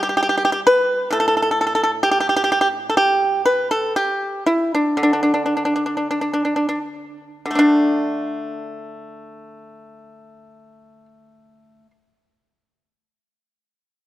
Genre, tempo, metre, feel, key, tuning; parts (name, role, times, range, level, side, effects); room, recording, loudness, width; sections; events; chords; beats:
chinese traditional, Chinese solo plucked strings; 43-72 BPM; 4/4; rubato; A4 = 443 Hz
pipa; solo; 0.0-11.9 s; A2 to B4; -17 LUFS; equal
moderate scoring stage reverb, RT60 2.1 s; -16 LUFS; side -14 dB against mid
0.0-7.6 A section; 7.6-12.8 B section
slowing down 0.0-7.6
0.26 1.12 2.01 | 2.94 3.93 5.00 6.23 | 7.58 8.92 10.17 11.45